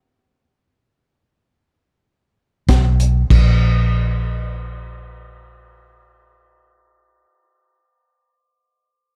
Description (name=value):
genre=straight-eighth soul blues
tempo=free time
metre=none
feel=none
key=unclear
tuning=A4 = 440 Hz
part: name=vintage muted fingered electric bass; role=bass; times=2.7-7.2 s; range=Bb1 to Cb2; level=-18 LUFS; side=equal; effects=none
part: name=crunchy breakbeat drum kit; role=drums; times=2.7-3.5 s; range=crash cymbal, hi-hat, kick drum, snare drum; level=-20 LUFS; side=equal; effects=none
room=little or no reverb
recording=none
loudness=-16 LUFS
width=mono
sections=0.0-3.3 A section; 3.3-5.8 B section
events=stop 0.0-2.7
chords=none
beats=free time